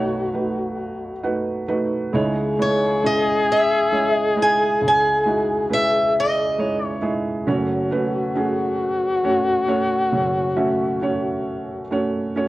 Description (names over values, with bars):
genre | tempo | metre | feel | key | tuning
acoustic folk-pop ballad | 45 BPM (dotted quarters) | 6/8 | straight | unclear | A4 = 445 Hz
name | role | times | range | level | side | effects
French horn with straight mute | second line | 0.0-12.3 s | F#4 to G#4 | -22 LUFS | left 2 dB | cassette tape, plate reverb
felt-muted upright piano | accompaniment | 0.0-12.5 s | F#1 to F#5 | -23 LUFS | right 2 dB | cassette tape, plate reverb
picked swing-style acoustic guitar | melody | 2.6-7.1 s | C#5 to G#5 | -19 LUFS | equal | cassette tape
room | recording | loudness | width
moderate booth ambience, RT60 0.2 s | home recording on cassette | -18 LUFS | side -17 dB against mid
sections
0.0-12.5 A section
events
none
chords
0.0 B7; 2.1 C#madd9; 7.5 F#m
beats
0.79 | 2.12 3.46 | 4.80 6.13 | 7.46 8.79 | 10.13 11.47